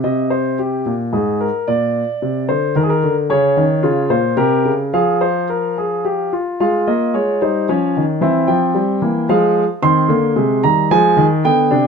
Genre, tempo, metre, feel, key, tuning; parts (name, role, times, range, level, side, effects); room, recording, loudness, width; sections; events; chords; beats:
classical, baroque-style 3-part fugue for grand piano; 111 BPM; 3/4; straight; F minor from 3.3 s; A4 = 441 Hz
warm concert grand piano; solo; 0.0-11.9 s; Ab2 to C6; -14 LUFS; equal
light reverb; -14 LUFS; side -6 dB against mid
0.0-6.6 A section; 6.6-11.9 B section
0.0 Cm; 1.1 Absus2; 1.7 Bb; 2.7 Eb5; 3.3 Dbsus2; 3.8 Bbmadd9; 4.4 C5; 4.9 Fm; 6.6 Fm/Ab; 7.7 Dbadd9; 8.2 C7/E; 9.3 Fm; 9.8 Cm; 10.9 Fm
| 0.05 0.59 1.13 | 1.67 2.21 2.75 | 3.29 3.82 4.37 | 4.92 5.47 6.03 | 6.58 7.13 7.67 | 8.21 8.75 9.28 | 9.82 10.36 10.90 | 11.44